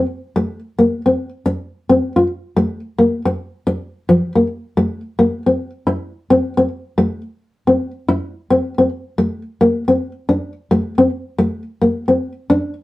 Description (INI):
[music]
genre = highlife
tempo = 109 BPM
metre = 4/4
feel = swing 54% on 16ths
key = C mixolydian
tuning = A4 = 439 Hz
[part]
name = nylon-string guitar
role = solo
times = 0.0-12.7 s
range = F3 to F4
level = -14 LUFS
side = left 1 dB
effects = none
[sound]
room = moderate studio ambience, RT60 0.5 s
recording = band playing live in one room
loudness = -16 LUFS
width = side -17 dB against mid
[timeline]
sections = 0.0-12.8 A section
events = none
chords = none